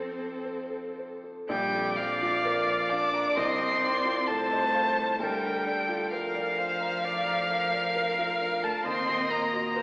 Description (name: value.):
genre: classical, slow romantic movement for piano quartet.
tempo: 65 BPM.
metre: 4/4.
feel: rubato.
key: Bb major.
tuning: A4 = 440 Hz.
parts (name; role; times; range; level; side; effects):
rich violin; melody; 0.0-9.8 s; C5 to D6; -28 LUFS; equal; none.
rich cello; second line; 0.0-9.8 s; F3 to D4; -34 LUFS; equal; none.
bright viola; accompaniment; 0.0-9.8 s; A4 to Eb5; -32 LUFS; equal; none.
dark grand piano; accompaniment; 0.0-9.8 s; Bb1 to Bb5; -33 LUFS; equal; none.
room: wet scoring stage reverb, RT60 2.0 s.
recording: heard from further back in the room, AM radio sound.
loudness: -25 LUFS.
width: side -29 dB against mid.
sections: 0.0-1.5 A section; 1.5-9.8 B section.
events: none.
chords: 0.0 F; 1.5 Bb; 3.4 F7/C; 5.2 Bb/D; 8.8 Ebm.